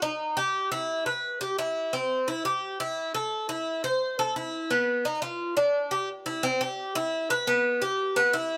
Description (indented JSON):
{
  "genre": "latin",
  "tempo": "173 BPM",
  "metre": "4/4",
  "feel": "straight",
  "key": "E harmonic minor",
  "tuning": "A4 = 436 Hz",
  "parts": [
    { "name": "Cuban tres", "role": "solo", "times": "0.0-8.6 s", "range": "B3 to C5", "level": "-28 LUFS", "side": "equal", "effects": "none" }
  ],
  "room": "light reverb",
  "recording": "close, detailed microphones",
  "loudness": "-28 LUFS",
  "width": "mono",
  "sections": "0.0-6.1 A section; 6.1-8.6 B section",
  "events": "none",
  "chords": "none"
}